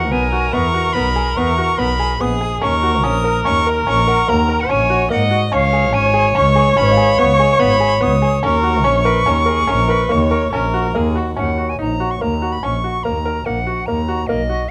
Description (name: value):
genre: contemporary instrumental, chamber music in an uneven meter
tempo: 144 BPM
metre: 7/4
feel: straight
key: Eb minor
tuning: A4 = 440 Hz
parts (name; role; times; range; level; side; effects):
- bright reedy silver concert flute; melody; 0.0-14.7 s; D#5 to Eb6; -22 LUFS; equal; none
- rich viola; second line; 0.0-11.4 s; Gb4 to Eb5; -21 LUFS; equal; none
- warm double bass; bass; 0.0-14.6 s; Ab1 to Ab2; -21 LUFS; equal; none
- large celesta; texture; 0.0-12.5 s; Cb5 to Bb5; -31 LUFS; equal; none
- bright baby grand piano; arpeggios; 0.1-14.6 s; Bb3 to Bb4; -23 LUFS; equal; none
room: little or no reverb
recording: close, detailed microphones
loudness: -16 LUFS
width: mono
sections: 0.0-11.4 A section; 11.4-14.7 B section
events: none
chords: 0.0 Eadd9; 2.6 Ebm7; 5.5 Db7; 8.4 Eb7(no3); 11.4 Ebm7